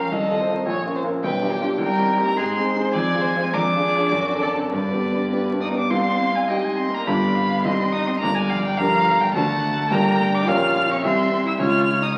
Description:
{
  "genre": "quick classical-period movement for piano quartet",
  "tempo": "105 BPM",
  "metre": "2/4",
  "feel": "rubato",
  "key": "C minor",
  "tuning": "A4 = 438 Hz",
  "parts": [
    { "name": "rich violin", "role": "melody", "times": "0.0-12.2 s", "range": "D5 to F6", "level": "-27 LUFS", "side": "equal", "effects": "none" },
    { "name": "rich violin", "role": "second line", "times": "0.0-12.2 s", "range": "F#4 to Bb5", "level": "-28 LUFS", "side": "equal", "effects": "none" },
    { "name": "warm cello", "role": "second line", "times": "0.0-12.2 s", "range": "D3 to F4", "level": "-30 LUFS", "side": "equal", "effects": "none" },
    { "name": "dark grand piano", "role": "accompaniment", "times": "0.0-12.2 s", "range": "G1 to F5", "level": "-24 LUFS", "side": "equal", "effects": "none" }
  ],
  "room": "wet recital hall reverb, RT60 1.6 s",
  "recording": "very old 78 rpm record, vinyl crackle",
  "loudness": "-21 LUFS",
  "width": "mono",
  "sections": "0.0-5.9 A section; 5.9-12.2 B section",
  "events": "none",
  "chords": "0.1 F7/C; 0.7 Bbm; 1.2 G7/B; 1.8 Cm; 2.4 Ab; 2.9 Fm; 3.5 Ddim/F; 4.1 D7/F#; 4.7 G; 5.9 Cm; 7.1 G7; 7.6 Cm; 8.2 Gm; 9.3 D7; 9.9 Gm; 10.5 Gm7b5/Bb; 11.0 C; 11.6 Db"
}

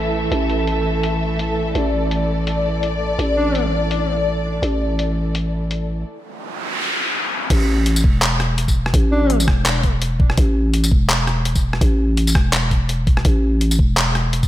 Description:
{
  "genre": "half-time drum and bass",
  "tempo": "167 BPM",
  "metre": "4/4",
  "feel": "swing 56% on 16ths, half-time",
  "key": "unclear",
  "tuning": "A4 = 441 Hz",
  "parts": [
    { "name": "warm studio string section", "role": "sustained chords", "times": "0.0-6.0 s", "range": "E3 to E5", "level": "-22 LUFS", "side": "equal", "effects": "sidechain pumping, low-pass filter" },
    { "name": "growling 808-style bass", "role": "bass", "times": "0.0-14.5 s", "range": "E1 to A1", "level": "-19 LUFS", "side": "equal", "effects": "none" },
    { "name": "boom bap sampler-style drum kit", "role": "drums", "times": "0.3-14.5 s", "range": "crash cymbal, handclaps, hi-hat, rim click, tambourine", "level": "-22 LUFS", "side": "equal", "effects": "low-pass filter on hats, low-pass filter on cymbals, low-pass filter on perc, low-pass filter on snare" },
    { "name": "warm alto saxophone", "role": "melody", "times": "3.4-3.7, 9.1-9.4 s", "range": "D4", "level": "-24 LUFS", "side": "left 1 dB", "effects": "ping-pong delay" },
    { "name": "noise sweep", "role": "sound effects", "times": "6.3-7.5 s", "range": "none", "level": "-23 LUFS", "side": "equal", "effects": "none" },
    { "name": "electronic kick drum", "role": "drums", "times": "7.5-14.5 s", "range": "none", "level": "-16 LUFS", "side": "equal", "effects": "none" }
  ],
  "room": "light reverb, digital ambience",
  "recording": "none",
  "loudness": "-16 LUFS",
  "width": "side -14 dB against mid",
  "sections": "0.0-7.5 A section; 7.5-14.5 B section",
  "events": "filter sweep on string section 0.0-7.5; noise sweep 6.3-7.5; drop 7.5-14.5",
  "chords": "0.0 A5"
}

